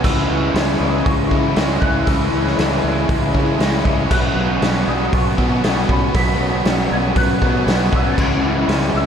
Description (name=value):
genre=rock, shoegaze and dream pop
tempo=118 BPM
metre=4/4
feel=straight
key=unclear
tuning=A4 = 442 Hz
part: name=small celesta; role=melody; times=0.0-9.1 s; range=B5 to B6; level=-27 LUFS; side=equal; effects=ensemble chorus, tape echo
part: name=semi-hollow electric guitar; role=arpeggios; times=0.0-9.1 s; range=E3 to C#4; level=-27 LUFS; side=right 6 dB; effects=none
part: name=biting overdriven guitar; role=riff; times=0.0-9.1 s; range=B2 to C#4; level=-24 LUFS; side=right 6 dB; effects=reverse reverb
part: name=biting overdriven guitar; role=riff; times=0.0-9.1 s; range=B2 to C#4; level=-26 LUFS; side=right 1 dB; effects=none
part: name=raw garage guitar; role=riff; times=0.0-9.1 s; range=B2 to F#4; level=-22 LUFS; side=left 7 dB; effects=overdrive, analog chorus
part: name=growling fingered electric bass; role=bass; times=0.0-9.1 s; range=B1 to C#3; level=-21 LUFS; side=equal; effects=overdrive
part: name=raw garage drum kit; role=drums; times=0.0-8.8 s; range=crash cymbal, hi-hat, kick drum, snare drum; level=-20 LUFS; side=equal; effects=none
room=wet huge ambient reverb, RT60 7.3 s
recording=dreamy mix soaked in reverb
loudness=-15 LUFS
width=side -8 dB against mid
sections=0.0-9.1 A section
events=none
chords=0.0 C#m; 4.1 Bsus2; 8.2 C#m